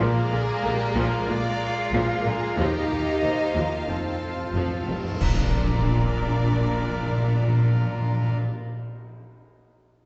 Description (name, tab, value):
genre	cinematic, epic orchestral film score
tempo	93 BPM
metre	4/4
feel	straight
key	Bb major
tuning	A4 = 441 Hz
part	warm symphonic violin section	melody	0.0-8.4 s	F4 to D5	-39 LUFS	equal	none
part	mellow flute section	second line	0.0-8.4 s	Bb4 to Bb5	-35 LUFS	equal	none
part	warm symphonic violin section	second line	0.0-8.4 s	D5 to Bb5	-40 LUFS	equal	none
part	warm symphonic viola section	accompaniment	0.0-8.4 s	C3 to G4	-34 LUFS	equal	none
part	pipe organ, trumpet	sustained chords	0.0-8.4 s	Ab3 to A5	-37 LUFS	equal	none
part	warm French horn section	sustained chords	0.0-8.4 s	Bb3 to Bb4	-34 LUFS	equal	none
part	clear symphonic cello section	bass	0.0-8.4 s	Eb2 to Bb2	-35 LUFS	equal	none
part	warm chamber double bass section	bass	0.0-8.4 s	F1 to Eb2	-31 LUFS	equal	none
part	timpani	percussion	0.0-8.4 s	F2 to Bb2	-29 LUFS	equal	none
part	cymbal swell, clash cymbals and concert bass drum	percussion	2.6-6.5 s	none	-33 LUFS	equal	none
part	impact	sound effects	5.2-8.4 s	none	-37 LUFS	equal	none
room	wet scoring stage reverb, RT60 2.0 s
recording	heard from further back in the room, nothing above 8.0 kHz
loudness	-24 LUFS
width	mono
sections	0.0-5.2 A section; 5.2-7.8 B section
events	timpani fill 3.9-5.2; band accent 5.2-5.9; impact 5.2-7.8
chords	0.0 Bb7; 2.6 Ebadd9; 3.9 F; 5.2 Bb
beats	| 0.00 0.64 1.29 1.94 | 2.58 3.23 3.89 4.55 | 5.21 5.86 6.50 7.14